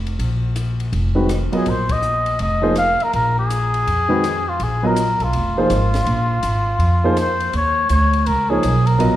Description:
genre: modal jazz.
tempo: 163 BPM.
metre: 4/4.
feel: swing 64% on 8ths.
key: unclear.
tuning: A4 = 440 Hz.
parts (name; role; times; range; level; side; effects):
upright bass; bass; 0.0-9.2 s; F1 to F2; -20 LUFS; equal; none.
compact cocktail drum kit; drums; 0.1-9.1 s; hi-hat, kick drum, ride cymbal, rim click, snare drum; -32 LUFS; left 2 dB; none.
warm concert grand piano; accompaniment; 1.1-9.2 s; Eb3 to Eb5; -21 LUFS; right 1 dB; none.
trumpet with cup mute; melody; 1.6-9.2 s; F4 to F5; -19 LUFS; left 1 dB; none.
room: light reverb.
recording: none.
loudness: -16 LUFS.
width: side -13 dB against mid.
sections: 0.0-7.5 A section; 7.5-9.2 B section.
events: band accent 1.8.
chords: 0.0 Bb7(no3); 7.5 Eb7sus2.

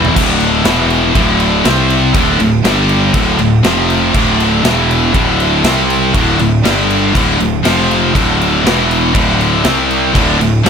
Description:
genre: heavy metal.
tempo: 120 BPM.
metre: 4/4.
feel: straight.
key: D minor.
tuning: A4 = 440 Hz.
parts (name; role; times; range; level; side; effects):
distorted electric guitar; riff; 0.0-10.7 s; D2 to C4; -18 LUFS; equal; overdrive.
scooped high-gain guitar; riff; 0.0-10.7 s; D2 to C4; -15 LUFS; left 11 dB; distortion.
scooped high-gain guitar; riff; 0.0-10.7 s; D2 to C4; -16 LUFS; right 9 dB; distortion.
fuzz picked electric bass; bass; 0.0-10.7 s; D1 to C2; -17 LUFS; equal; overdrive.
big rock drum kit; drums; 0.0-10.7 s; crash cymbal, kick drum, snare drum, toms; -17 LUFS; equal; none.
room: little or no reverb.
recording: none.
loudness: -9 LUFS.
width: side -7 dB against mid.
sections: 0.2-10.7 A section.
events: drum fill 0.0.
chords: 0.2 D5; 0.7 E5; 1.2 D5; 1.7 C5; 2.1 D5; 2.6 G5; 3.1 D5; 3.6 F5; 4.1 D5; 4.6 E5; 5.1 D5; 5.6 C5; 6.1 D5; 6.6 G5; 7.1 D5; 7.6 F5; 8.1 D5; 8.6 E5; 9.1 D5; 9.7 C5; 10.2 D5.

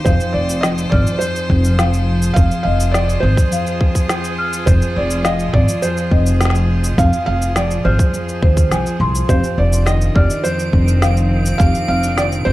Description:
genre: folktronica.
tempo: 104 BPM.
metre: 4/4.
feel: straight.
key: F dorian.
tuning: A4 = 438 Hz.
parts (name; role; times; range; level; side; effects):
felt-muted upright piano; melody; 0.0-12.5 s; C5 to F5; -22 LUFS; right 2 dB; tape echo.
bright string quartet; sustained chords; 0.0-12.5 s; Eb3 to C5; -27 LUFS; right 2 dB; none.
nylon-string guitar; arpeggios; 0.0-12.5 s; F2 to Ab4; -23 LUFS; left 1 dB; none.
marimba with soft mallets; second line; 0.1-12.2 s; C5 to F6; -26 LUFS; left 3 dB; tape echo.
upright bass; bass; 0.1-12.5 s; F1 to Eb2; -16 LUFS; equal; none.
electronic kick drum; drums; 0.1-11.7 s; none; -16 LUFS; equal; none.
electronic shaker and snare drum; drums; 0.1-12.4 s; none; -23 LUFS; equal; none.
backwards swelling texture; texture; 9.8-12.5 s; D7; -29 LUFS; right 3 dB; built-in reverb.
room: studio ambience.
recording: dark, warm production.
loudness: -13 LUFS.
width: side -16 dB against mid.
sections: 0.1-12.5 A section.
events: none.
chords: 0.1 Fm; 9.3 Cmadd9/F.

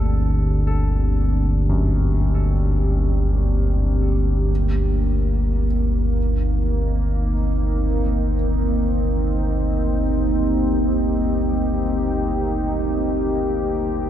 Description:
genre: dark ambient drone.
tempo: free time.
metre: none.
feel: none.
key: unclear.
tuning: A4 = 440 Hz.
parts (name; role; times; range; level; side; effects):
deep dark ambient pad; sustained chords; 0.0-14.1 s; Bb3 to G4; -23 LUFS; equal; chorus, built-in reverb.
dark grand piano; arpeggios; 0.0-14.1 s; F#2 to A4; -33 LUFS; left 2 dB; ping-pong delay.
deep rumbling drone; drone; 0.0-14.1 s; G1 to D2; -20 LUFS; equal; built-in reverb, wide subtle chorus.
room: wet cathedral reverb, RT60 7.3 s.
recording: in a vast, echoing space.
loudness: -18 LUFS.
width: side -11 dB against mid.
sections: 0.0-14.1 A section.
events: fade-in on ambient pad 0.0-14.1; fade-in on grand piano 0.0-14.1; fade-out 10.4-14.1.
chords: 0.0 Gm; 4.5 Eb.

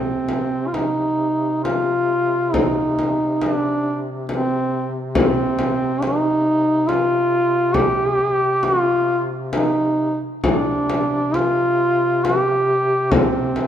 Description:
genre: caucasian folk, Caucasian lament.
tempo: 68 BPM.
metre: 3/4.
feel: rubato.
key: C minor.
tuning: A4 = 439 Hz.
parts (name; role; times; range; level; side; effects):
mellow duduk; melody; 0.0-13.7 s; C4 to G4; -18 LUFS; equal; none.
mellow duduk; drone; 0.0-13.7 s; C3; -28 LUFS; equal; none.
frame drum; percussion; 0.3-13.7 s; none; -22 LUFS; left 2 dB; none.
room: moderate concert hall reverb, RT60 1.9 s.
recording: minimal, uncompressed stereo recording.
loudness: -17 LUFS.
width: side -9 dB against mid.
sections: 0.0-13.7 A section.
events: none.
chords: none.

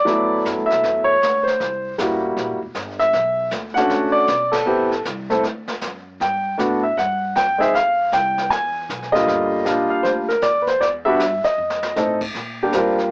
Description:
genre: jazz piano trio.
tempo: 156 BPM.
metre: 4/4.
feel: swing 64% on 8ths.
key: unclear.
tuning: A4 = 440 Hz.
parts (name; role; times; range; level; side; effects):
warm concert grand piano; melody; 0.0-13.1 s; D3 to G#5; -17 LUFS; equal; cassette tape.
upright bass; bass; 0.1-13.1 s; E1 to Bb2; -34 LUFS; equal; none.
jazz brush drum kit; drums; 0.1-13.1 s; brushed snare drum, crash cymbal, hi-hat, kick drum, ride cymbal, snare drum; -29 LUFS; equal; cassette tape.
room: moderate booth ambience, RT60 0.2 s.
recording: home recording on cassette, AM radio sound.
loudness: -17 LUFS.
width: side -28 dB against mid.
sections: 0.1-12.4 A section.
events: band accent 4.5; drum fill 11.6-12.0.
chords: 0.1 D6; 1.6 C7#11; 3.1 Bm9; 4.7 Am7; 5.4 D; 6.2 Gmaj7(no3); 7.7 Fsus2; 8.5 E; 9.3 Ebmaj9; 10.8 Em; 11.6 F7; 12.4 Bb6.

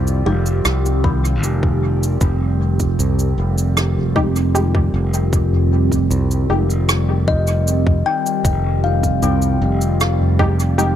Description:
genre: ambient dub.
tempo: 77 BPM.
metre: 4/4.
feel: straight.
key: unclear.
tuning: A4 = 440 Hz.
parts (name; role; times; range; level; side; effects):
warbly tape-like pad; sustained chords; 0.0-11.0 s; Eb3 to G4; -23 LUFS; equal; chorus, built-in reverb, phaser, vintage 12-bit sampler grit.
kalimba; arpeggios; 0.0-11.0 s; Eb3 to G5; -24 LUFS; left 6 dB; dub echo.
modern bright fingered electric bass; bass; 0.0-11.0 s; F1 to C2; -17 LUFS; equal; tube saturation.
soft-mallet drum kit; drums; 0.1-10.9 s; cabasa, rim click, toms; -23 LUFS; right 3 dB; dub echo.
filtered dub chord stab; stabs; 0.3-11.0 s; Ab3 to G4; -23 LUFS; equal; chorus, dub echo.
electronic kick drum; drums; 1.0-10.6 s; none; -18 LUFS; equal; none.
room: light reverb, small room ambience.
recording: none.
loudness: -15 LUFS.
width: side -10 dB against mid.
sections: 0.0-11.0 A section.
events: none.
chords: 0.0 Fm9.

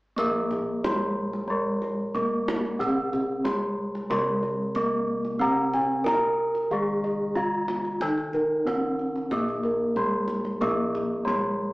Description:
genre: Javanese gamelan.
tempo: 92 BPM.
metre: 4/4.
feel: straight.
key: Bb slendro.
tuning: A4 = 440 Hz.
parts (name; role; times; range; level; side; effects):
gamelan-type bronze metallophone; melody; 0.2-11.7 s; Ab3-40c to Bb4; -28 LUFS; equal; none.
gamelan-type bronze metallophone; accompaniment; 0.2-11.7 s; C3+40c to Bb3; -33 LUFS; left 1 dB; none.
gamelan-type bossed gongs; arpeggios; 0.2-11.6 s; Ab4-40c to Bb5; -29 LUFS; equal; none.
gamelan-type bossed gongs; bass; 0.2-11.7 s; Bb1 to Bb4; -34 LUFS; right 1 dB; none.
kendang; percussion; 0.2-11.4 s; none; -36 LUFS; right 1 dB; none.
room: wet studio reverb, RT60 0.6 s.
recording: band playing live in one room, small speaker sound, faint mains hum.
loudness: -24 LUFS.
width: side -21 dB against mid.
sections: 0.2-11.7 A section.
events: none.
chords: none.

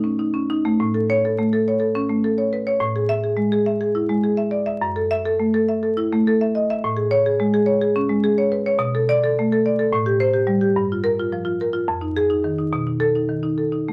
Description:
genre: classical, contemporary piece for solo marimba.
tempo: 210 BPM (eighths).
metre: 7/8.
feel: rubato.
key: A lydian.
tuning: A4 = 441 Hz.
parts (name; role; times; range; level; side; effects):
marimba with medium hard mallets; solo; 0.0-13.9 s; F2 to E5; -20 LUFS; equal; none.
room: moderate studio reverb, RT60 0.8 s.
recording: vinyl crackle.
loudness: -20 LUFS.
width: mono.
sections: 0.8-13.9 A section.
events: none.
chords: 0.0 B9; 0.8 A; 2.8 E/A; 4.8 F#m7; 6.8 Amaj7; 8.8 Bm7; 9.9 Am7; 10.8 Gm7; 11.9 Fm7; 12.7 B7.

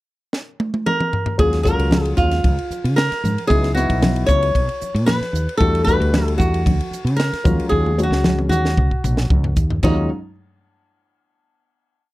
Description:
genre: electric jazz fusion.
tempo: 114 BPM.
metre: 4/4.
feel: straight.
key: unclear.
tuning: A4 = 444 Hz.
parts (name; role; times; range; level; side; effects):
crisp fusion drum kit; drums; 0.3-10.0 s; crash cymbal, hi-hat, kick drum, ride cymbal, snare drum, toms; -21 LUFS; equal; none.
flamenco guitar; melody; 0.9-10.1 s; Eb4 to Db5; -21 LUFS; equal; none.
dark baby grand piano; accompaniment; 1.4-10.1 s; Gb3 to F#4; -23 LUFS; left 3 dB; none.
woody fretless electric bass; bass; 1.4-10.1 s; Bb1 to Db3; -19 LUFS; equal; none.
congas; percussion; 1.4-10.1 s; none; -24 LUFS; equal; none.
room: little or no reverb.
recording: dry, close 1970s-style studio recording.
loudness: -16 LUFS.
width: side -18 dB against mid.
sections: 0.0-1.4 pickup bar; 1.4-9.8 A section; 9.8-12.0 final chord.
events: drum fill 0.3-1.4, 7.7-9.8.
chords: 0.0 N.C.; 1.4 Ebm11; 3.5 Dbm11; 5.6 Em11; 7.5 Ebm11.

